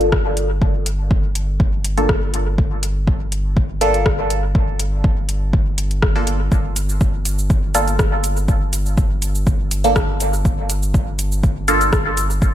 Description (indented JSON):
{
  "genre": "dub techno",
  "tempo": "122 BPM",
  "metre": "4/4",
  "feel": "straight",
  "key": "G minor",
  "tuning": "A4 = 439 Hz",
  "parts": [
    { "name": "filtered dub chord stab", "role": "stabs", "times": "0.0-12.0 s", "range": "Bb3 to A4", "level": "-20 LUFS", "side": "equal", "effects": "phaser, sidechain pumping, dub echo" },
    { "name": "round analog bass", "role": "bass", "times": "0.0-12.5 s", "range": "G1", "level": "-21 LUFS", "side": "equal", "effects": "sidechain pumping" },
    { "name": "deep house drum kit", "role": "drums", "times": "0.0-12.5 s", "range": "cabasa, hi-hat, rim click", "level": "-25 LUFS", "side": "left 1 dB", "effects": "overdrive, dub echo" },
    { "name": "electronic kick drum", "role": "drums", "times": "0.1-12.5 s", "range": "none", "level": "-17 LUFS", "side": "equal", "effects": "overdrive" }
  ],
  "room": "digital ambience",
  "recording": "echo-heavy mix",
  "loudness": "-16 LUFS",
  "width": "side -12 dB against mid",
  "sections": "0.0-12.5 A section",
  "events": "none",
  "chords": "0.0 Gm7"
}